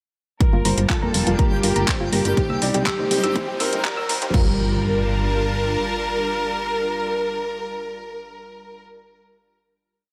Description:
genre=progressive house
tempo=122 BPM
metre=4/4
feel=straight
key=G minor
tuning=A4 = 441 Hz
part: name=warm velvety synth lead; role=melody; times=0.4-8.8 s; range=G4 to Bb4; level=-29 LUFS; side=equal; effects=chorus, sidechain pumping, digital delay
part: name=clear studio violin section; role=second line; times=0.4-8.8 s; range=G4 to Bb4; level=-34 LUFS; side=equal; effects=sidechain pumping, low-pass filter, digital delay
part: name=supersaw pad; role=sustained chords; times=0.8-8.8 s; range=G3 to A5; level=-33 LUFS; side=equal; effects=sidechain pumping
part: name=dark grand piano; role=stabs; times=0.4-8.8 s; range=G3 to D5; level=-30 LUFS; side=equal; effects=sidechain pumping, low-pass filter
part: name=electronic kick drum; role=drums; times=0.4-4.4 s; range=none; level=-22 LUFS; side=equal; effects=none
part: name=pop drum kit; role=drums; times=0.4-4.4 s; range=crash cymbal, handclaps, hi-hat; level=-28 LUFS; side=equal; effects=high-pass filter on hats, high-pass filter on snare, high-pass filter on cymbals
part: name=riser and impact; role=sound effects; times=2.3-8.9 s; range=none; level=-34 LUFS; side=equal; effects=none
part: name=twinkling granular texture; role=texture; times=1.1-4.3 s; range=G5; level=-40 LUFS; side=equal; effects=none
part: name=soft round pluck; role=arpeggios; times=0.5-4.6 s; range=F4 to E6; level=-32 LUFS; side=equal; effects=chorus, cassette tape, sidechain pumping, digital delay
part: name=tight sequencer bass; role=bass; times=0.5-5.8 s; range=F1 to Eb2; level=-27 LUFS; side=equal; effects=sidechain pumping
part: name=congas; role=percussion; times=0.5-4.2 s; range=none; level=-33 LUFS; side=equal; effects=sidechain pumping on perc
room=light reverb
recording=high-pass filter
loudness=-21 LUFS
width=mono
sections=0.4-4.3 build; 4.3-8.3 final chord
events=build-up 0.4-4.3; filter sweep on grand piano 0.4-4.3; filter sweep on soft synth lead 0.4-4.3; filter sweep 0.4-4.3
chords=0.4 Gm7; 2.4 Cm; 4.3 Gm7

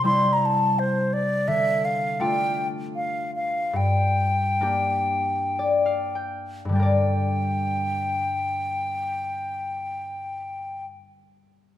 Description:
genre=celtic folk, Celtic slow air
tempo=51-85 BPM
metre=3/4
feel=rubato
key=G dorian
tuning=A4 = 440 Hz
part: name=bright baroque flute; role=melody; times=0.0-10.9 s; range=C5 to C6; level=-24 LUFS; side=equal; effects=none
part: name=concert harp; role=accompaniment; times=0.0-11.1 s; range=G2 to G5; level=-25 LUFS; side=left 2 dB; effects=none
room=moderate recital hall reverb, RT60 1.5 s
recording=minimal, uncompressed stereo recording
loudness=-22 LUFS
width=side -12 dB against mid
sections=0.0-6.7 A section; 6.7-10.1 B section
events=slowing down 1.5-6.7; harp fill 5.1-6.7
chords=0.0 C; 1.5 Dm; 3.7 Gm

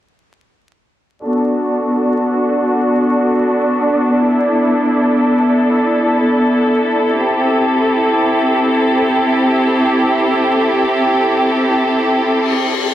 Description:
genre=drum and bass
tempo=free time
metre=none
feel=none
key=B phrygian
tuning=A4 = 440 Hz
part: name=rich symphonic string section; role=sustained chords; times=1.2-12.9 s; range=B3 to A4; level=-12 LUFS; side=equal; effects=vintage 12-bit sampler grit, low-pass filter
part: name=reverse cymbal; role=sound effects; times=12.4-12.9 s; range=none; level=-18 LUFS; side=left 6 dB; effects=none
room=moderate lush hall reverb, RT60 2.4 s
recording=heavily compressed radio sound, multiband compression, vinyl crackle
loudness=-12 LUFS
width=side -12 dB against mid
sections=1.2-12.9 A section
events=filter sweep on string section 1.2-12.9; reverse cymbal 12.4-12.9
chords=1.2 Bm7; 7.2 Am7

